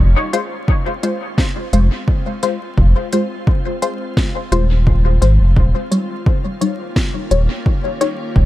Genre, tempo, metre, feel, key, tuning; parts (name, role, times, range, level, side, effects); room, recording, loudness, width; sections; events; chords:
ambient dub; 86 BPM; 4/4; swing 54% on 16ths; F minor; A4 = 439 Hz
soft additive organ-like pad; sustained chords; 0.0-8.5 s; Eb3 to G4; -30 LUFS; equal; ensemble chorus, built-in reverb
warm sub bass; bass; 0.0-8.5 s; Eb1 to Ab1; -12 LUFS; equal; tube saturation
filtered dub chord stab; stabs; 0.3-8.2 s; G3 to Db5; -21 LUFS; left 2 dB; analog chorus, cassette tape, dub echo
organic electronic drum kit; drums; 0.3-8.2 s; hi-hat, snare drum; -27 LUFS; equal; dub echo
electronic kick drum; drums; 0.7-8.5 s; -16 LUFS; equal
digital ambience; vinyl crackle; -14 LUFS; side -15 dB against mid
0.0-8.5 A section
fade-in on ambient pad 0.0-8.5
0.0 Fm; 5.6 Eb7